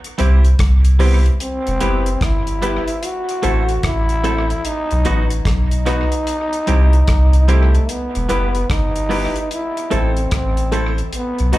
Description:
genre	roots reggae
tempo	74 BPM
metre	4/4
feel	swing 64% on 16ths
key	E harmonic minor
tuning	A4 = 440 Hz
part	damped 70s drum kit	drums	0.0-11.6 s	hi-hat, kick drum, rim click	-24 LUFS	equal	tape echo
part	semi-hollow electric guitar	accompaniment	0.2-11.6 s	F#3 to A4	-26 LUFS	right 7 dB	tape echo, slapback echo
part	clear concert grand piano	stabs	0.2-11.6 s	D#4 to D#5	-24 LUFS	left 4 dB	slapback echo
part	soft dub sub bass	bass	0.2-11.6 s	E1 to C2	-15 LUFS	equal	none
part	growling trombone	melody	1.0-11.6 s	A3 to F#4	-22 LUFS	equal	tape echo, slapback echo
room	little or no reverb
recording	live gig heard through the venue's PA, club reverb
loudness	-14 LUFS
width	side -16 dB against mid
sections	0.0-11.6 A section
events	none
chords	0.0 C; 1.4 Em; 3.0 Am; 4.6 B; 6.3 C; 7.9 Em; 9.5 Am

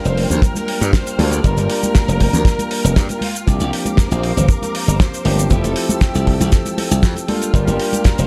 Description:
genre	nu-disco, nu disco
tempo	118 BPM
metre	4/4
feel	straight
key	G dorian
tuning	A4 = 442 Hz
part	rich studio violin section	melody	0.0-8.3 s	F4 to D5	-29 LUFS	equal	analog delay
part	barky tine electric piano	accompaniment	0.0-8.3 s	F3 to Bb4	-26 LUFS	equal	vintage 12-bit sampler grit, sidechain pumping
part	dark symphonic string section	sustained chords	0.0-8.3 s	Bb3 to F6	-32 LUFS	equal	sidechain pumping
part	damped 70s drum kit	drums	0.0-8.3 s	hi-hat, shaker, snare drum	-26 LUFS	equal	none
part	glassy slap bass	bass	0.1-8.3 s	F1 to G2	-19 LUFS	equal	tube saturation
part	congas	percussion	0.3-8.2 s	none	-26 LUFS	equal	none
part	kick drum	drums	0.4-8.2 s	none	-17 LUFS	equal	none
room	little or no reverb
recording	dry, gritty hardware recording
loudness	-17 LUFS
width	mono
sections	0.0-8.3 A section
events	none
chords	0.0 Gm7; 3.5 C9sus4; 5.5 Fmaj9; 7.3 Gm7

